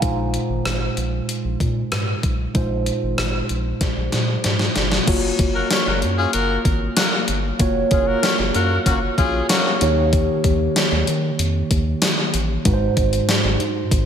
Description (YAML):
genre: 1980s-style pop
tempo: 95 BPM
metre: 4/4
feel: straight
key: unclear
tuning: A4 = 439 Hz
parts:
  - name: mellow tine electric piano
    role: accompaniment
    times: 0.0-14.1 s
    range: Ab2 to Ab5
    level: -22 LUFS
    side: right 2 dB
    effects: phaser
  - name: round analog bass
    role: bass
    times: 0.0-14.1 s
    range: Gb1 to Eb3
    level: -24 LUFS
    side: equal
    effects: none
  - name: gated 80s digital drum machine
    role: drums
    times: 0.0-14.1 s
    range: crash cymbal, hi-hat, kick drum, rim click, snare drum, tambourine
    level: -21 LUFS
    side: left 1 dB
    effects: gated reverb, gated reverb snare, overdrive
  - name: warm horn section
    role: stabs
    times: 5.5-9.7 s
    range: Bb3 to Db5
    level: -23 LUFS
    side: left 4 dB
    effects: none
room: moderate lush hall reverb, RT60 2.7 s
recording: big arena sound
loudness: -17 LUFS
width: side -8 dB against mid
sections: 0.0-5.1 A section; 5.1-14.1 B section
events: drum fill 3.8-5.1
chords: 0.0 Fm7; 5.1 Gbmaj7; 9.8 Eb7; 12.7 Ab7